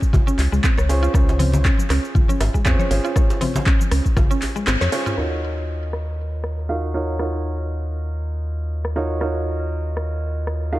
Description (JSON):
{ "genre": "afro house", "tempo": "119 BPM", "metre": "4/4", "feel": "swing 56% on 16ths", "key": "Eb dorian", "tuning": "A4 = 435 Hz", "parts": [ { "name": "felt-muted upright piano", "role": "stabs", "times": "0.0-10.8 s", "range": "Db4 to F5", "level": "-27 LUFS", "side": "right 2 dB", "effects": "sidechain pumping, low-pass filter, ping-pong delay" }, { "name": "afro-pop drum kit", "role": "drums", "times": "0.0-10.6 s", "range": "handclaps, hi-hat, rim click, shaker, snare drum, toms", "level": "-26 LUFS", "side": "equal", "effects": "low-pass filter on perc, low-pass filter on toms, low-pass filter on snare, low-pass filter on hats" }, { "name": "electronic kick drum", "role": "drums", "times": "0.0-4.3 s", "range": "none", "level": "-18 LUFS", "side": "equal", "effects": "none" }, { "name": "mallet-like synth pluck", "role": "arpeggios", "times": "0.1-5.2 s", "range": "Ab3 to Db5", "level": "-27 LUFS", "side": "equal", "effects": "chorus, sidechain pumping, ping-pong delay" }, { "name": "round analog bass", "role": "bass", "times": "0.1-10.8 s", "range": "Ab1 to F2", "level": "-22 LUFS", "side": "equal", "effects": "sidechain pumping" }, { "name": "congas", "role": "percussion", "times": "0.1-4.9 s", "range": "none", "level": "-28 LUFS", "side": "left 3 dB", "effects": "none" }, { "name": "djembe", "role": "percussion", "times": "0.1-4.5 s", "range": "none", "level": "-30 LUFS", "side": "right 1 dB", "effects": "none" } ], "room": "digital ambience", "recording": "dark, warm production", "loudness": "-18 LUFS", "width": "side -16 dB against mid", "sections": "0.0-5.2 A section; 5.2-10.8 B section", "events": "kick drops out 4.7-5.2; drum fill 4.7-5.2; band accent 4.7; filter sweep on felt piano 5.2-10.8", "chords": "0.0 Dbmaj7; 5.2 Ebm9", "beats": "0.13 0.64 | 1.14 1.65 2.15 2.65 | 3.16 3.66 4.17 4.67 | 5.18 5.68 6.18 6.69 | 7.19 7.70 8.20 8.71 | 9.21 9.71 10.22 10.72" }